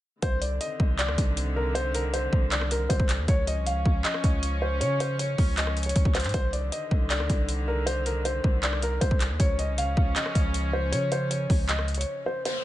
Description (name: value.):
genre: hip hop, trap.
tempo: 157 BPM.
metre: 4/4.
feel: half-time.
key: unclear.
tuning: A4 = 439 Hz.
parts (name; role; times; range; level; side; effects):
dark concert grand piano; melody; 0.2-12.6 s; Bb4 to F5; -30 LUFS; left 1 dB; low-pass filter, digital delay.
warm studio string section; sustained chords; 0.2-12.4 s; C3 to Db4; -35 LUFS; equal; none.
warm 808-style bass; bass; 0.2-12.0 s; C2 to Db3; -28 LUFS; equal; none.
trap drum kit; drums; 0.2-12.5 s; handclaps, hi-hat, kick drum, rim click; -26 LUFS; equal; none.
downlifter; sound effects; 12.5-12.6 s; none; -31 LUFS; left 2 dB; none.
room: digital ambience.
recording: nothing above 10.5 kHz.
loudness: -23 LUFS.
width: side -14 dB against mid.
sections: 0.2-12.5 A section.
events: break 12.1-12.5; kick muted 12.5.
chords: 0.2 Cmadd9; 3.3 Db; 6.3 Cmadd9; 9.4 Db.